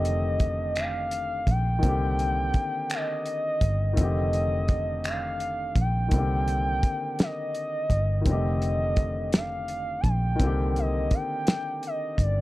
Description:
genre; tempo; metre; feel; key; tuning
slow six-eight R&B; 56 BPM (dotted quarters); 6/8; straight; C dorian; A4 = 440 Hz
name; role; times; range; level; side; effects
gliding portamento lead; melody; 0.0-12.4 s; D5 to A5; -29 LUFS; equal; chorus
warm grand piano; accompaniment; 0.0-12.4 s; D3 to G4; -32 LUFS; left 3 dB; none
vintage muted fingered electric bass; bass; 0.0-12.4 s; F1 to C2; -27 LUFS; equal; none
cloth-damped thuddy drum kit; drums; 0.0-12.4 s; finger snaps, hi-hat, kick drum, snare drum; -25 LUFS; equal; none
room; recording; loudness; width
little or no reverb; dry, close 1970s-style studio recording; -24 LUFS; side -17 dB against mid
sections
0.0-12.4 A section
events
none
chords
0.0 F13; 1.8 Cm7; 4.0 F13; 6.1 Cm7; 8.3 F13; 10.4 Cm7

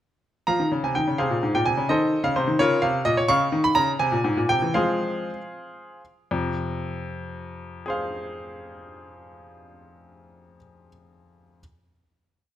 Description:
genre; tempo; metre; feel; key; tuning
classical-period piano sonatina; 75-87 BPM (dotted quarters); 6/8; straight; F minor; A4 = 441 Hz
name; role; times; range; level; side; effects
bright grand piano; solo; 0.5-11.6 s; F2 to Db6; -22 LUFS; equal; none
room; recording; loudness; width
moderate recital hall reverb, RT60 1.6 s; none; -21 LUFS; side -11 dB against mid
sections
0.5-6.3 A section; 6.3-9.4 final chord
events
slowing down 2.6-6.3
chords
0.5 Fm; 1.9 Cm6; 2.6 Bbm; 3.3 Db13; 4.0 C7; 4.8 Fm

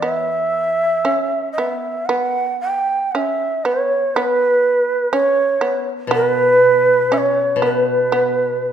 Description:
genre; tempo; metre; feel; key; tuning
japanese traditional, Japanese chamber music; 59 BPM; 2/4; uneven beats, rubato; unclear; A4 = 440 Hz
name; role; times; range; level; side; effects
breathy shakuhachi; melody; 0.0-8.7 s; B4 to G5; -16 LUFS; right 2 dB; none
shamisen; second line; 0.0-8.7 s; B3 to C#4; -24 LUFS; right 3 dB; none
koto; accompaniment; 0.0-1.0, 6.1-8.7 s; B2 to E3; -24 LUFS; left 8 dB; none
room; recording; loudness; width
moderate concert hall reverb, RT60 1.9 s; minimal, uncompressed stereo recording; -15 LUFS; side -9 dB against mid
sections
0.0-2.1 A section; 2.1-8.7 B section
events
none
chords
none

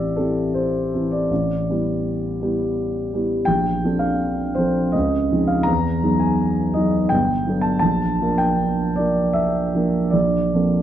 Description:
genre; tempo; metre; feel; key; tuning
classical, impressionist solo piano; 74-86 BPM; 3/4; rubato; unclear; A4 = 442 Hz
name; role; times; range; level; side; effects
warm grand piano; solo; 0.0-10.8 s; G1 to Bb5; -18 LUFS; equal; none
room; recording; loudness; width
wet scoring stage reverb, RT60 1.7 s; dark, warm production; -18 LUFS; side -10 dB against mid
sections
0.0-10.8 A section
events
none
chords
0.0 Am7; 1.3 G69/A; 3.5 Bbmaj9; 4.9 C#maj9; 5.7 Emaj9; 7.1 Gmaj9; 7.8 Bb; 10.1 Bbmaj9

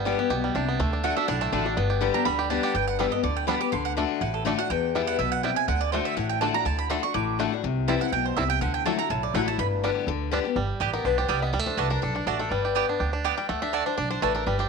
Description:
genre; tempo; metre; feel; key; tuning
bluegrass; 246 BPM; 4/4; swing 53% on 8ths; G major; A4 = 440 Hz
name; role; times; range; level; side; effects
bluegrass banjo; melody; 0.0-14.7 s; D3 to G4; -30 LUFS; right 6 dB; slapback echo
picked steel-string acoustic guitar; accompaniment; 0.0-14.7 s; E2 to G5; -27 LUFS; left 11 dB; none
upright bass; bass; 0.0-14.7 s; G1 to E2; -30 LUFS; right 1 dB; none
mandolin; stabs; 1.0-14.3 s; A3 to D6; -29 LUFS; right 14 dB; none
room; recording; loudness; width
light reverb, studio reverb; 1960s-style stereo with parts hard left and right; -23 LUFS; side -5 dB against mid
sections
0.0-2.7 A section; 2.7-10.6 A section; 10.6-14.7 A section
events
mandolin solo 0.0-10.6; steel-string acoustic guitar solo 10.6-14.7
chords
0.0 G; 0.8 D; 1.8 G; 3.7 D; 4.7 Em; 5.7 D; 7.6 C; 8.6 Dadd9; 9.6 G; 11.5 D; 12.5 G; 13.5 D

